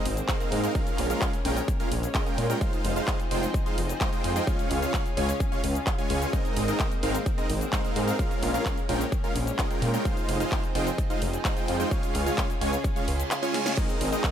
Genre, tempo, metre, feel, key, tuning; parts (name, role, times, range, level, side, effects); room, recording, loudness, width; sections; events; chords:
EDM, festival progressive house; 129 BPM; 4/4; straight; F minor; A4 = 440 Hz
lush unison pad; sustained chords; 0.0-14.3 s; Db3 to Ab4; -35 LUFS; equal; chorus, sidechain pumping
supersaw chords; riff; 0.0-14.3 s; Ab3 to Ab5; -29 LUFS; right 1 dB; sidechain pumping, digital delay
wide detuned saw bass; bass; 0.1-14.2 s; F1 to Bb2; -29 LUFS; equal; chorus, sidechain pumping
big-room dance drum kit; drums; 0.1-14.3 s; cabasa, crash cymbal, handclaps, hi-hat, snare drum; -33 LUFS; left 1 dB
electronic kick drum; drums; 0.3-14.3 s; -28 LUFS; equal
reverse cymbal; sound effects; 13.0-13.8 s; -37 LUFS; right 6 dB
little or no reverb; -24 LUFS; side -9 dB against mid
0.0-14.3 A section
reverse cymbal 13.0-13.8; drum fill 13.5
0.0 Abadd9; 0.8 Bbm7; 2.6 Fm7; 4.5 Db; 6.3 Abadd9; 8.2 Bbm7; 10.1 Fm7; 11.9 Db; 13.8 Abadd9